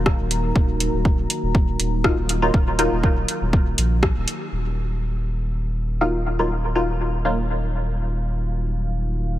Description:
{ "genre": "dub techno", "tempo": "121 BPM", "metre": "4/4", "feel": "swing 53% on 16ths", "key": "Eb minor", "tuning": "A4 = 439 Hz", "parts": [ { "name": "deep dark ambient pad", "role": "sustained chords", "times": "0.0-9.4 s", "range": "Eb4 to Bb5", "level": "-30 LUFS", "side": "right 1 dB", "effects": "chorus, built-in reverb, sidechain pumping" }, { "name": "warm sub bass", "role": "bass", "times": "0.0-9.4 s", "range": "Eb1 to Bb1", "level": "-23 LUFS", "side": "equal", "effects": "sidechain pumping" }, { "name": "deep house drum kit", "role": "drums", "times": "0.1-4.4 s", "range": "hi-hat, rim click", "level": "-25 LUFS", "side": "equal", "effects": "overdrive, low-pass filter on hats, low-pass filter on snare" }, { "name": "electronic kick drum", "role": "drums", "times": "0.1-4.1 s", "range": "none", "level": "-19 LUFS", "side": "equal", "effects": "overdrive" }, { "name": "filtered dub chord stab", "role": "stabs", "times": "2.0-3.0, 6.0-7.4 s", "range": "Gb3 to F4", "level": "-24 LUFS", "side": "left 1 dB", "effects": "chorus, phaser, sidechain pumping, dub echo" } ], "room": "light reverb", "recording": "none", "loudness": "-19 LUFS", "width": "side -14 dB against mid", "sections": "0.0-4.5 A section; 4.5-9.4 B section", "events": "band accent 4.0; filter sweep on synth stab 4.5-9.4", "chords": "0.0 Ebmadd9" }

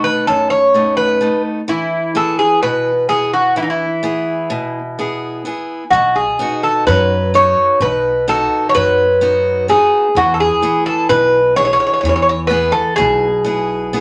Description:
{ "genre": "greek folk", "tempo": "127 BPM (eighths)", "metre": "9/8", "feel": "straight", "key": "E major", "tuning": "A4 = 439 Hz", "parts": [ { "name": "Greek bouzouki", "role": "melody", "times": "0.0-14.0 s", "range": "D#4 to C#5", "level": "-16 LUFS", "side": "equal", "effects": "none" }, { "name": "picked steel-string acoustic guitar", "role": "accompaniment", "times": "0.0-14.0 s", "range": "F#2 to G#4", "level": "-23 LUFS", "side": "equal", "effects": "none" }, { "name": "upright bass", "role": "bass", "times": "5.9-14.0 s", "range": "B1 to F#2", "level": "-25 LUFS", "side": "equal", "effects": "none" } ], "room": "moderate studio reverb, RT60 0.6 s", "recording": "none", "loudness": "-15 LUFS", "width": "mono", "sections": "0.0-5.9 A section; 5.9-14.0 B section", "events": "none", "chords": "0.0 B7; 1.7 E; 5.9 B; 10.2 E" }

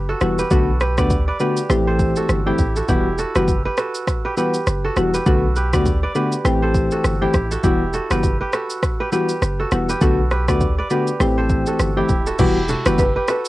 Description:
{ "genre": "afrobeats", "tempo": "101 BPM", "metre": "4/4", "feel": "swing 58% on 16ths", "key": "E minor", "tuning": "A4 = 439 Hz", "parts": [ { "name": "kora", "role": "riff", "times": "0.0-13.5 s", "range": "E4 to D5", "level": "-24 LUFS", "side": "right 3 dB", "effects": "cassette tape, analog delay" }, { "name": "warm 808-style bass", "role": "bass", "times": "0.0-13.2 s", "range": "D1 to D2", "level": "-22 LUFS", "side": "equal", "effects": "none" }, { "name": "soft electric-piano-like synth keys", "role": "accompaniment", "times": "0.2-13.0 s", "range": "D3 to G4", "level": "-19 LUFS", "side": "left 2 dB", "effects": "chorus, cassette tape" }, { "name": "afro-pop drum kit", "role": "drums", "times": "0.2-13.5 s", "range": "crash cymbal, kick drum, rim click, shaker", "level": "-21 LUFS", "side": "equal", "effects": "cassette tape" }, { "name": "congas and bongos", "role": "percussion", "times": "12.4-13.4 s", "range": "none", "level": "-26 LUFS", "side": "left 2 dB", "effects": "none" }, { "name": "buzzing marimba with medium mallets", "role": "melody", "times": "13.0-13.5 s", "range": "B4", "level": "-21 LUFS", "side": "equal", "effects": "cassette tape" } ], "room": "light reverb", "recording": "home recording on cassette", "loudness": "-16 LUFS", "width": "side -17 dB against mid", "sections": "0.0-12.4 A section; 12.4-13.5 B section", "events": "none", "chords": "0.0 Emadd9; 0.5 Bm7; 1.7 Am7; 2.9 Emadd9; 5.3 Bm7; 6.5 Am7; 7.6 Emadd9; 10.0 Bm7; 11.2 Am7; 12.4 Emadd9" }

